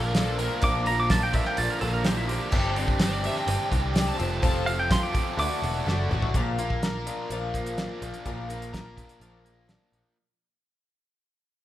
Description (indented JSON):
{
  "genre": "folk rock and heartland rock",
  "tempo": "126 BPM",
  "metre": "4/4",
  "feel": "straight",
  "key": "unclear",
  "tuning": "A4 = 441 Hz",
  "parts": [
    { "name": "pedal steel guitar", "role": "melody", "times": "0.0-6.3 s", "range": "E4 to D6", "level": "-29 LUFS", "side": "right 2 dB", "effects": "none" },
    { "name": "overdriven slide guitar", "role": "second line", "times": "0.0-4.7 s", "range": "A4 to A5", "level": "-34 LUFS", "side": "right 1 dB", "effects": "none" },
    { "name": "picked twelve-string acoustic guitar", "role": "accompaniment", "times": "0.0-10.2 s", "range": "G2 to D5", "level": "-33 LUFS", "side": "left 4 dB", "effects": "none" },
    { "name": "biting overdriven guitar", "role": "riff", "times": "0.0-10.2 s", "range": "F2 to Bb4", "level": "-31 LUFS", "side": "right 1 dB", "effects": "none" },
    { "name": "picked electric bass", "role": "bass", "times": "0.0-10.0 s", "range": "E1 to D2", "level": "-30 LUFS", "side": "equal", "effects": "none" },
    { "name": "cloth-damped thuddy drum kit", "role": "drums", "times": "0.1-10.0 s", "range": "crash cymbal, hi-hat, kick drum, snare drum, toms", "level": "-27 LUFS", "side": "equal", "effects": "none" }
  ],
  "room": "moderate recital hall reverb, RT60 1.3 s",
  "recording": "recorded in a church or concert hall",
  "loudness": "-24 LUFS",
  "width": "side -13 dB against mid",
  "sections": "0.0-6.3 A section; 6.3-10.2 B section",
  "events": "pedal steel guitar solo 0.0-6.3; drum fill 5.9-6.3; fade-out 6.3-10.2",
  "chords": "0.0 Bb; 2.5 Gsus4; 4.2 F; 5.4 Dadd9; 6.3 Bb"
}